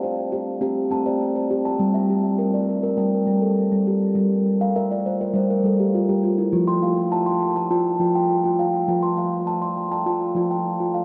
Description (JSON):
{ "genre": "world meditative, meditative tuned percussion", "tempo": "102 BPM", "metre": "4/4", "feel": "straight", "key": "G dorian", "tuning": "A4 = 441 Hz", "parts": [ { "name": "steel tongue drum", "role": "solo", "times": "0.0-11.0 s", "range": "F3 to C6", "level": "-22 LUFS", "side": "equal", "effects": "diffuse ambient delay" } ], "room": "wet huge ambient reverb, RT60 7.5 s", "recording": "in a vast, echoing space", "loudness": "-21 LUFS", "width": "mono", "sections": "0.0-1.8 A section; 1.8-11.0 B section", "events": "steel tongue drum fill 4.6-6.5", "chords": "0.0 C5; 1.8 Gm; 6.5 F", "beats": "0.02 0.61 1.21 | 1.80 2.39 2.98 3.58 | 4.17 4.76 5.35 5.94 | 6.53 7.12 7.71 8.30 | 8.88 9.47 10.06 10.65" }